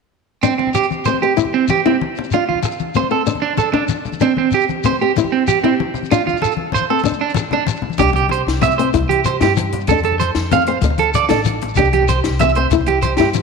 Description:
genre	highlife guitar band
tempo	127 BPM (dotted quarters)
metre	12/8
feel	straight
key	C major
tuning	A4 = 438 Hz
part	flamenco guitar	accompaniment	0.4-13.4 s	C4 to E4	-21 LUFS	left 12 dB	none
part	electric guitar at the edge of break-up	arpeggios	0.4-13.3 s	C4 to F5	-17 LUFS	right 9 dB	tape echo
part	congas	percussion	0.4-13.4 s	none	-25 LUFS	left 10 dB	none
part	shekere	percussion	0.4-13.4 s	none	-24 LUFS	left 6 dB	none
part	upright bass	bass	8.0-13.4 s	A1 to G2	-21 LUFS	left 1 dB	none
part	compact cocktail drum kit	drums	8.0-13.4 s	hi-hat, kick drum, snare drum	-25 LUFS	left 5 dB	none
room	moderate echo chamber reverb, RT60 2.2 s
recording	1960s-style stereo with parts hard left and right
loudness	-14 LUFS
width	side -4 dB against mid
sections	0.4-8.0 A section; 8.0-13.4 B section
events	none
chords	0.4 C; 2.3 F; 3.3 D5; 4.2 C; 6.1 F; 7.0 D5; 8.0 C; 9.9 F; 10.8 D5; 11.8 C

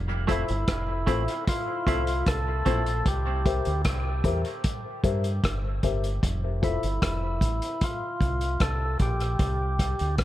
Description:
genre	dub reggae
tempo	76 BPM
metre	4/4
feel	straight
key	F major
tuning	A4 = 440 Hz
part	deep dub fingered electric bass	bass	0.0-10.2 s	F1 to G2	-28 LUFS	equal	none
part	percussive tonewheel organ	melody	0.3-10.2 s	E4 to A4	-31 LUFS	equal	overdrive, dub echo
part	semi-hollow electric guitar	accompaniment	0.3-2.8 s	A3 to E4	-35 LUFS	right 4 dB	dub echo
part	dark upright piano	stabs	0.3-6.8 s	F4 to E5	-33 LUFS	left 7 dB	dub echo
part	vintage drum kit	drums	0.3-10.2 s	hi-hat, kick drum, rim click	-28 LUFS	equal	none
room	light reverb, studio reverb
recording	none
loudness	-24 LUFS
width	side -14 dB against mid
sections	0.0-10.2 A section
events	none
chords	0.0 Fmaj7; 3.1 C7; 6.2 Fmaj7; 9.4 C5

